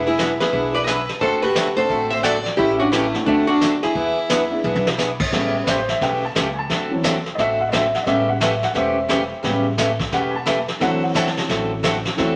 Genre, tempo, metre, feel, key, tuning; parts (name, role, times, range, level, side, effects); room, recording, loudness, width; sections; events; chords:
country, western swing; 175 BPM; 4/4; swing 63% on 8ths; A4 = 441 Hz
archtop guitar, miked and amplified; melody; 0.0-4.9 s; A3 to F#5; -22 LUFS; equal
clear fiddle; second line; 0.0-4.9 s; A3 to D5; -28 LUFS; equal
picked swing-style acoustic guitar; accompaniment; 0.0-12.4 s; C#3 to A4; -25 LUFS; equal
upright bass; bass; 0.0-12.4 s; E1 to E2; -34 LUFS; equal
vintage brush drum kit; drums; 0.2-12.4 s; brushed snare drum, crash cymbal, hi-hat, kick drum, snare drum, toms; -27 LUFS; equal
warm upright piano; accompaniment; 0.4-12.4 s; C#3 to A5; -25 LUFS; equal
wet studio reverb, RT60 0.8 s; -20 LUFS; mono
0.0-5.3 A section; 5.3-12.4 B section
drum fill 4.6-5.0; upright piano solo 5.3-12.4
0.0 E7; 1.2 D7; 2.6 A7; 3.3 D7; 4.0 E7; 5.3 A7; 6.7 D7; 8.1 A7; 10.8 D7